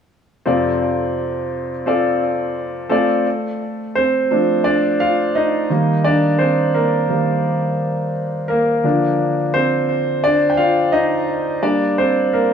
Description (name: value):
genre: pop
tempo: 86 BPM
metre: 4/4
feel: straight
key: F mixolydian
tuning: A4 = 440 Hz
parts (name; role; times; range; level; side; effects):
- clear baby grand piano; solo; 0.5-12.5 s; F2 to G5; -15 LUFS; equal; digital delay
room: moderate echo chamber reverb, RT60 1.7 s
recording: small room ambience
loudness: -15 LUFS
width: side -7 dB against mid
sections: 0.5-3.3 A section; 3.3-12.5 B section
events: grand piano solo 3.3-12.5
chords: 0.5 F6; 5.7 Eb; 8.8 Bb/D; 11.6 Gm